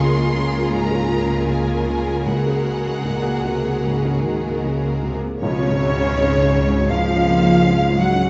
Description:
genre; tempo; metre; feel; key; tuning
cinematic, emotional film score for orchestra; 75-82 BPM; 4/4; rubato; unclear; A4 = 442 Hz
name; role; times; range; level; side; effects
rich studio violin section; melody; 0.0-8.3 s; Db5 to C6; -33 LUFS; equal; none
rich studio violin section; second line; 0.0-8.3 s; Ab4 to Gb5; -29 LUFS; equal; none
clear studio viola section; accompaniment; 0.0-8.3 s; F3 to Gb4; -31 LUFS; equal; none
felt-muted upright piano; accompaniment; 0.0-8.3 s; Db2 to Ab4; -28 LUFS; equal; none
mellow French horn section; sustained chords; 0.0-8.3 s; Ab3 to Ab4; -29 LUFS; equal; none
warm studio cello section; bass; 0.0-8.3 s; Bb2 to Gb3; -25 LUFS; equal; none
warm studio double bass section; bass; 0.0-8.3 s; Db2; -26 LUFS; equal; none
wooden-headed alto flute; melody; 5.4-8.3 s; Db4 to Gb4; -26 LUFS; equal; none
concert flute; second line; 5.4-8.3 s; Db5 to Gb5; -27 LUFS; equal; none
tam-tam; percussion; 5.4-8.3 s; none; -32 LUFS; equal; none
room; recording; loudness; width
moderate scoring stage reverb, RT60 2.0 s; vinyl crackle, nothing above 7.8 kHz; -19 LUFS; mono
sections
0.0-5.4 A section; 5.4-8.3 B section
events
band accent 5.4-6.2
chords
0.0 Db6; 2.3 Gbadd9/Db; 5.4 Db

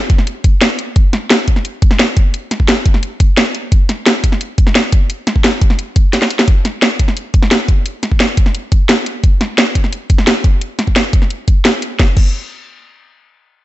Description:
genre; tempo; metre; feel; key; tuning
drum and bass; 174 BPM; 4/4; straight; none; none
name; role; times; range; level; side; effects
drum and bass drum kit; drums; 0.1-12.2 s; crash cymbal, hi-hat, snare drum; -14 LUFS; equal; overdrive
electronic kick drum; drums; 0.1-12.2 s; none; -11 LUFS; equal; overdrive
room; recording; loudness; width
light reverb; dark, warm production, nothing above 8.0 kHz; -11 LUFS; side -16 dB against mid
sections
0.0-6.5 A section; 6.5-12.0 B section; 12.0-13.4 C section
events
drop 0.0-6.5; drum fill 6.1-6.5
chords
none

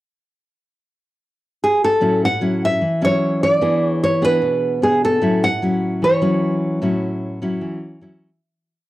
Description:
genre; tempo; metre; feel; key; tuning
bossa nova; 150 BPM; 4/4; straight; A major; A4 = 440 Hz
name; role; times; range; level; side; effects
nylon-string guitar; melody; 1.6-8.0 s; G#4 to F#5; -17 LUFS; right 1 dB; plate reverb
nylon-string guitar; accompaniment; 2.0-8.4 s; A2 to G#4; -19 LUFS; left 1 dB; cassette tape, plate reverb
room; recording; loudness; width
moderate small room reverb, RT60 0.5 s; home recording on cassette; -16 LUFS; side -16 dB against mid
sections
0.4-2.0 pickup bar; 2.0-8.4 A section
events
fade-out 6.8-8.4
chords
0.4 N.C.; 2.0 A6; 3.6 E7; 5.2 A6

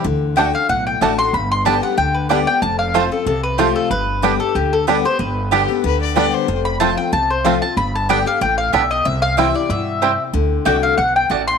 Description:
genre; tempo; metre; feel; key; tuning
bluegrass; 187 BPM; 4/4; swing 54% on 8ths; unclear; A4 = 442 Hz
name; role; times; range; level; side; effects
bluegrass banjo; melody; 0.0-10.1 s; G3 to F4; -23 LUFS; right 6 dB; none
picked steel-string acoustic guitar; accompaniment; 0.0-11.6 s; F2 to G4; -21 LUFS; left 11 dB; none
upright bass; bass; 0.0-11.6 s; F1 to G2; -23 LUFS; right 2 dB; none
mandolin; melody; 0.4-11.6 s; G4 to C6; -18 LUFS; left 2 dB; slapback echo
mandolin; stabs; 0.4-11.4 s; A3 to A5; -23 LUFS; right 14 dB; none
clear fiddle; second line; 5.5-6.6 s; G4 to D5; -24 LUFS; left 12 dB; none
room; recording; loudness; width
light reverb, small room ambience; 1960s-style stereo with parts hard left and right; -15 LUFS; side -6 dB against mid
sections
0.1-10.3 A section; 10.3-11.6 A section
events
none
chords
0.1 D; 1.3 G; 2.6 F; 3.9 G; 6.5 F; 7.8 G; 9.1 C; 10.3 D

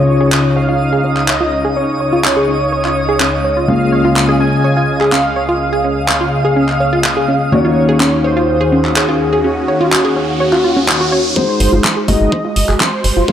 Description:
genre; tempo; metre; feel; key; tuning
progressive house; 125 BPM; 4/4; straight; Db major; A4 = 440 Hz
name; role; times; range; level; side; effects
wide unison lead; melody; 0.0-13.3 s; Gb4 to Ab5; -18 LUFS; equal; analog chorus, vintage 12-bit sampler grit, tape echo
filtered supersaw swell; sustained chords; 0.0-13.3 s; Db2 to F5; -20 LUFS; right 1 dB; sidechain pumping, low-pass filter
felt-muted upright piano; stabs; 0.0-13.3 s; Db3 to F5; -17 LUFS; left 2 dB; sidechain pumping, low-pass filter, tape echo
twinkling granular texture; texture; 0.0-11.4 s; Eb6; -27 LUFS; right 3 dB; built-in reverb, sidechain pumping
wide unison pluck; arpeggios; 0.2-13.2 s; C4 to Db5; -18 LUFS; equal; sidechain pumping, tape echo
pop drum kit; drums; 0.3-13.1 s; handclaps, hi-hat; -18 LUFS; equal; overdrive
riser; sound effects; 9.4-13.3 s; none; -25 LUFS; right 1 dB; none
electronic kick drum; drums; 11.4-13.3 s; none; -19 LUFS; equal; overdrive, high-pass filter on kick, high-pass filter on room
tight sequencer bass; bass; 11.6-13.2 s; Ab1; -15 LUFS; equal; sidechain pumping
room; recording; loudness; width
wet lush hall reverb, RT60 1.7 s; dark, warm production; -11 LUFS; side -10 dB against mid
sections
0.0-11.4 A section; 11.4-13.3 B section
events
filter sweep on synth pluck 0.0-11.4; riser 9.4-11.4, 11.4-13.3; build-up 11.4-13.3; filter sweep on felt piano 11.4-13.3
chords
0.0 Db; 3.7 Bbm7/Db; 7.5 Ebm7; 11.4 Ab7

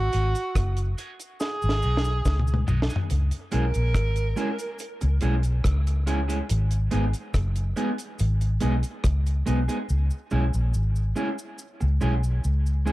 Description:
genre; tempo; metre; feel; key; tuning
dub reggae; 71 BPM; 4/4; straight; C# dorian; A4 = 441 Hz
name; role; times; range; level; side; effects
clear tenor saxophone; melody; 0.0-4.8 s; F#4 to A#4; -31 LUFS; right 2 dB; dub echo
vintage muted fingered electric bass; bass; 0.0-12.9 s; F#1 to C#2; -23 LUFS; equal; none
electric guitar at the edge of break-up; accompaniment; 0.1-12.9 s; G#3 to G#4; -30 LUFS; right 2 dB; high-pass filter, dub echo
deep reggae drum kit; drums; 0.1-9.9 s; hi-hat, kick drum, rim click, snare drum, toms; -28 LUFS; equal; none
cabasa; percussion; 0.1-12.9 s; none; -46 LUFS; left 1 dB; high-pass filter on perc
room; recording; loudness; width
small room ambience; dark, warm production; -22 LUFS; side -17 dB against mid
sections
0.0-12.9 A section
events
drum fill 1.4-3.1; part muted 9.9-12.9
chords
0.0 G#m; 3.1 C#m; 6.5 G#m; 9.9 C#m

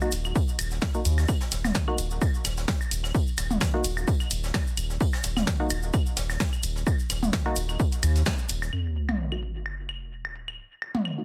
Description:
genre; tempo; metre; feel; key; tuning
minimal techno; 129 BPM; 4/4; swing 55% on 16ths; Eb minor; A4 = 436 Hz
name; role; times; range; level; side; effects
wavetable chord stab; stabs; 0.0-11.2 s; Bb3 to Gb4; -35 LUFS; equal; dub echo
electronic claves and toms; percussion; 0.0-11.2 s; none; -34 LUFS; equal; dub echo
tube shaker; percussion; 0.0-8.7 s; none; -41 LUFS; equal; none
round analog bass; bass; 0.1-8.7 s; Eb1 to Eb2; -30 LUFS; equal; sidechain pumping
jazz brush drum kit; drums; 0.1-8.7 s; hi-hat, snare drum, tambourine; -42 LUFS; equal; sidechain pumping on hats, high-pass filter on hats, high-pass filter on snare, sidechain pumping on perc, high-pass filter on perc, high-pass filter on room
punchy analog drum machine; drums; 0.1-10.9 s; hi-hat, snare drum; -31 LUFS; equal; low-pass filter on snare, low-pass filter on hats
electronic kick drum; drums; 0.4-8.4 s; none; -28 LUFS; equal; none
sub drop; sound effects; 8.7-10.6 s; none; -34 LUFS; equal; none
room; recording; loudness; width
little or no reverb; heavily compressed radio sound, multiband compression; -27 LUFS; mono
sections
0.0-8.7 A section; 8.7-11.2 B section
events
drop 0.0-8.7; band accent 8.3; impact 8.7-10.6; filter sweep on drum 8.7-11.2; filter sweep on synth stab 8.7-11.2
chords
0.0 N.C.; 8.7 Ebm

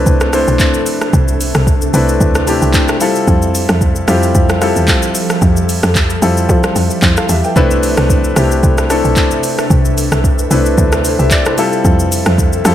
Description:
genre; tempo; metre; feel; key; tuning
amapiano; 112 BPM; 4/4; swing 55% on 16ths; C major; A4 = 440 Hz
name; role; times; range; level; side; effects
warm concert grand piano; accompaniment; 0.0-12.7 s; G3 to G5; -15 LUFS; left 2 dB; none
ethereal airy pad; sustained chords; 0.0-12.7 s; C3 to E5; -21 LUFS; right 1 dB; ensemble chorus, built-in reverb
woody log drum bass; bass; 0.0-12.7 s; B1 to F3; -14 LUFS; equal; none
smooth R&B drum kit; drums; 0.1-12.7 s; handclaps, hi-hat, kick drum, rim click, shaker; -14 LUFS; equal; none
room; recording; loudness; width
digital ambience; none; -10 LUFS; side -11 dB against mid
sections
0.0-12.7 A section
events
none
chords
0.0 Cmaj13; 3.0 Fmaj9; 7.6 Cmaj13; 11.6 Fmaj9

